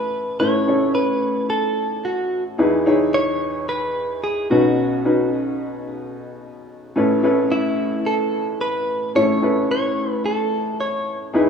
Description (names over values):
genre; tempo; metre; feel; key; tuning
piano-driven pop; 110 BPM; 4/4; straight; unclear; A4 = 436 Hz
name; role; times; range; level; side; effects
direct-recorded clean electric guitar; melody; 0.0-11.2 s; E4 to C#5; -22 LUFS; right 1 dB; digital delay
clear upright piano; accompaniment; 0.0-11.5 s; A1 to C#5; -20 LUFS; left 1 dB; none
room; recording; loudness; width
light reverb, studio reverb; rough home demo mix, small room reverb; -18 LUFS; side -6 dB against mid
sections
0.0-11.5 A section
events
none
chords
0.0 Aadd9; 2.6 Emaj7; 4.5 Badd9; 7.0 Aadd9